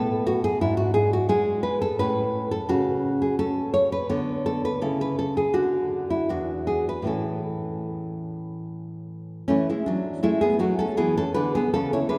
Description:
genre	classical, baroque-style dance for nylon-string guitar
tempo	73-88 BPM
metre	3/4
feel	rubato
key	A major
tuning	A4 = 440 Hz
part	nylon-string guitar	solo	0.0-12.2 s	E2 to C#5	-25 LUFS	equal	none
room	wet church reverb, RT60 3.4 s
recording	recorded in a church or concert hall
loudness	-25 LUFS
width	mono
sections	0.0-9.5 A section; 9.5-12.2 B section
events	none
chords	0.0 G#m7; 0.6 G#m7b5; 2.0 A; 2.7 N.C.; 4.1 Bm/D; 4.8 C#m7; 5.5 N.C.; 6.3 E9; 7.1 A; 9.5 A/E; 11.0 E5

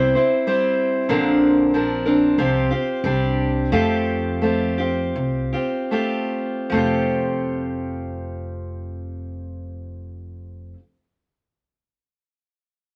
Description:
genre	acoustic folk duo or small band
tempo	73-94 BPM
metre	4/4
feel	straight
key	F major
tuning	A4 = 440 Hz
part	picked steel-string acoustic guitar	accompaniment	0.0-10.8 s	Bb2 to C5	-22 LUFS	equal	none
part	upright bass	bass	0.0-10.7 s	F1 to F2	-30 LUFS	equal	none
room	moderate studio reverb, RT60 0.7 s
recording	none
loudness	-21 LUFS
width	mono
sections	0.0-6.7 A section; 6.7-10.0 B section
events	slowing down 1.1-6.7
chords	0.0 C; 1.1 Bbadd9; 2.4 Csus4; 3.0 Csus2; 3.7 Fadd9

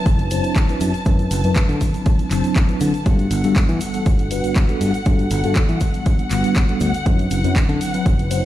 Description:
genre	filtered disco house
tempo	120 BPM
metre	4/4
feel	straight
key	G major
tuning	A4 = 437 Hz
part	mellow tine electric piano	accompaniment	0.0-8.4 s	F#3 to C5	-22 LUFS	equal	medium stereo tremolo, phaser, sidechain pumping
part	muted chamber violin section	sustained chords	0.0-8.4 s	F#5 to A5	-29 LUFS	left 1 dB	sidechain pumping
part	fingered electric bass	bass	0.1-8.4 s	F#1 to E3	-20 LUFS	equal	sidechain pumping
part	electronic kick drum	drums	0.1-8.2 s	none	-17 LUFS	equal	none
part	house drum kit	drums	0.1-8.4 s	handclaps, hi-hat	-30 LUFS	equal	sidechain pumping on hats, sidechain pumping on cymbals
part	tube shaker	percussion	0.1-8.4 s	none	-39 LUFS	right 6 dB	sidechain pumping on perc
room	digital ambience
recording	played on a big sound system in a bare room, stone room reverb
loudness	-16 LUFS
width	side -13 dB against mid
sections	0.0-8.4 A section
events	none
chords	0.0 D13/F#; 3.1 Gmaj9; 7.1 D13/F#

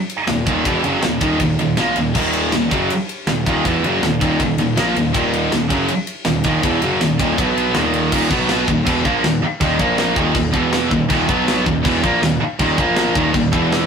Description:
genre	heavy metal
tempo	161 BPM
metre	4/4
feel	straight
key	Eb minor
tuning	A4 = 440 Hz
part	tight metal drum kit	drums	0.1-13.8 s	china cymbal, crash cymbal, kick drum, ride cymbal, snare drum	-22 LUFS	left 1 dB	none
part	heavy high-gain guitar	riff	0.3-13.9 s	Eb2 to B3	-18 LUFS	right 4 dB	distortion
part	scooped high-gain guitar	riff	0.3-13.9 s	Eb2 to B3	-22 LUFS	left 7 dB	distortion
part	fuzz picked electric bass	bass	0.3-13.9 s	Eb1 to B1	-27 LUFS	equal	overdrive
part	overdriven electric guitar	riff	2.2-13.9 s	Eb2 to B3	-26 LUFS	left 2 dB	none
room	moderate studio reverb, RT60 0.6 s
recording	rough rehearsal-room recording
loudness	-15 LUFS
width	side -6 dB against mid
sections	0.0-8.1 A section; 8.1-13.9 B section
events	none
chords	0.0 Ebm; 7.4 B5; 7.7 Eb5; 8.3 B5; 8.7 Eb5; 9.8 Bb5; 10.2 Eb5; 10.5 E5; 10.9 Eb5; 11.3 B5; 11.7 Eb5; 12.8 Bb5; 13.1 Eb5

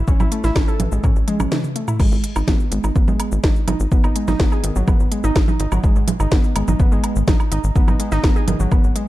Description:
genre	melodic techno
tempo	125 BPM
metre	4/4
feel	straight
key	G# phrygian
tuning	A4 = 439 Hz
part	tight sequencer bass	bass	0.0-8.9 s	G#1 to A2	-21 LUFS	equal	sidechain pumping
part	warbly dusty pluck	arpeggios	0.1-9.1 s	D#3 to A4	-24 LUFS	right 1 dB	chorus, sidechain pumping, digital delay
part	electronic kick drum	drums	0.1-8.8 s	none	-17 LUFS	equal	none
part	techno drum kit	drums	0.1-9.1 s	congas, crash cymbal, hi-hat, shaker, snare drum, toms, woodblock	-24 LUFS	right 2 dB	overdrive
room	little or no reverb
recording	dark, warm production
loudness	-15 LUFS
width	side -16 dB against mid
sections	0.0-9.1 A section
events	drum fill 1.3-2.0; break 1.5-2.0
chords	0.0 A; 2.0 G#m

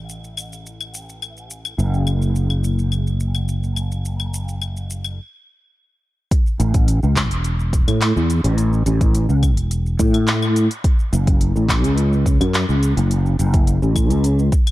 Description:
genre	sunset chillout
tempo	106 BPM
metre	4/4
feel	straight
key	A major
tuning	A4 = 441 Hz
part	sustaining fretless electric bass	bass	0.0-14.5 s	E1 to A2	-18 LUFS	equal	ensemble chorus
part	deep house drum kit	drums	0.1-14.7 s	claves, handclaps, hi-hat, shaker	-26 LUFS	left 1 dB	none
part	electronic kick drum	drums	6.3-14.6 s	none	-17 LUFS	equal	none
room	little or no reverb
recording	dark, warm production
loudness	-16 LUFS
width	side -16 dB against mid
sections	0.0-6.3 A section; 6.3-14.7 B section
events	stop 5.2-6.3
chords	none

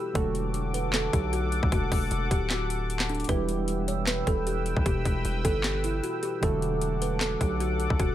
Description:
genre	hip hop, trap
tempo	153 BPM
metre	4/4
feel	half-time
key	unclear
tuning	A4 = 440 Hz
part	kalimba	melody	0.0-8.1 s	D4 to C#5	-32 LUFS	equal	none
part	soft electric-piano-like synth keys	accompaniment	0.0-8.1 s	B2 to A4	-34 LUFS	right 3 dB	chorus
part	sweeping resonant pad	sustained chords	0.0-8.1 s	A4 to E6	-34 LUFS	left 2 dB	chorus
part	distorted 808-style bass	bass	0.2-8.1 s	D1 to B1	-30 LUFS	equal	distortion
part	trap drum kit	drums	0.2-8.1 s	handclaps, hi-hat, kick drum, snare drum	-28 LUFS	equal	overdrive
room	little or no reverb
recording	none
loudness	-25 LUFS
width	side -12 dB against mid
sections	0.0-8.1 A section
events	none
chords	0.2 D/E; 3.3 Em; 6.4 D/E

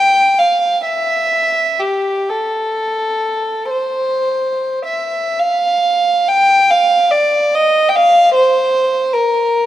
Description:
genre	classical, free, expressive piece for unaccompanied violin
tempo	28-52 BPM (dotted quarters)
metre	6/8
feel	rubato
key	unclear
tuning	A4 = 440 Hz
part	warm violin	solo	0.0-9.7 s	G4 to G5	-12 LUFS	equal	none
room	moderate concert hall reverb, RT60 1.9 s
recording	dark, warm production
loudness	-12 LUFS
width	side -12 dB against mid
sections	0.0-5.4 A section; 5.4-9.7 B section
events	none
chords	none

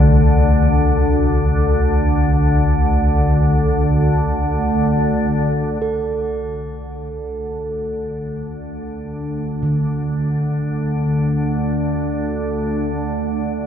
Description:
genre	dark ambient drone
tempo	free time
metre	none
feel	none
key	unclear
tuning	A4 = 440 Hz
part	gamelan-type bossed gongs	arpeggios	0.0-13.7 s	C2 to D3	-21 LUFS	equal	ping-pong delay
part	organ-like drone	drone	0.0-13.7 s	D2 to D3	-18 LUFS	left 1 dB	ensemble chorus, built-in reverb, phaser
part	bronze singing bowl	texture	0.0-13.7 s	A4	-30 LUFS	right 4 dB	none
part	deep dark ambient pad	sustained chords	7.4-13.7 s	A3 to D5	-25 LUFS	right 1 dB	chorus, built-in reverb
room	wet cathedral reverb, RT60 5.5 s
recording	in a vast, echoing space, cassette tape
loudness	-16 LUFS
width	side -9 dB against mid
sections	0.0-5.8 A section; 5.8-13.7 B section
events	fade-in on synth drone 5.8-13.7; fade-in on ambient pad 5.8-13.7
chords	0.0 D5

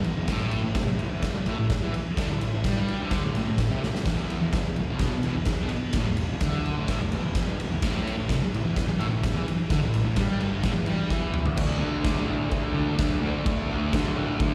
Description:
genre	garage rock duo or trio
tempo	128 BPM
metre	4/4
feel	straight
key	unclear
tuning	A4 = 442 Hz
part	thick fuzz guitar	riff	0.0-14.5 s	E2 to D4	-30 LUFS	equal	distortion, slapback echo
part	fuzz picked electric bass	bass	0.0-14.5 s	E1 to D3	-35 LUFS	equal	overdrive
part	oversized low-tuned drum kit	drums	0.0-14.5 s	crash cymbal, kick drum, ride cymbal, snare drum, splash cymbal, toms	-30 LUFS	equal	none
room	light reverb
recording	live gig heard through the venue's PA, recital hall reverb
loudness	-26 LUFS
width	mono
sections	0.0-11.6 A section; 11.6-14.5 B section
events	drum fill 3.8, 11.1-11.6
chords	0.3 A5; 4.1 E5; 7.8 A5; 11.6 D5

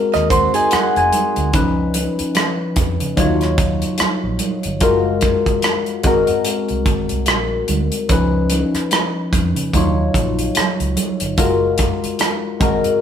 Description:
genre	lush 1970s-style soul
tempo	73 BPM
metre	4/4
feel	swing 58% on 16ths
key	F# major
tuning	A4 = 438 Hz
part	barky tine electric piano	accompaniment	0.0-13.0 s	D#3 to B#5	-18 LUFS	left 3 dB	phaser
part	direct-recorded clean electric guitar	riff	0.1-1.5 s	D#4 to D#5	-21 LUFS	right 5 dB	none
part	modern studio drum kit	drums	0.1-13.0 s	hi-hat, kick drum, rim click	-20 LUFS	right 1 dB	none
part	vintage muted fingered electric bass	bass	0.2-13.0 s	E#1 to C#3	-22 LUFS	right 1 dB	none
part	congas	percussion	0.7-12.8 s	none	-28 LUFS	right 5 dB	none
room	moderate stone room reverb, RT60 1.0 s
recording	band playing live in one room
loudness	-15 LUFS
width	side -8 dB against mid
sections	0.0-13.0 A section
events	tine electric piano fill 0.0-1.5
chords	0.0 G#9; 1.5 C#9; 3.2 D#m9; 4.8 F#maj9; 6.0 G#9; 8.1 C#9; 9.7 D#m9; 11.4 F#maj9

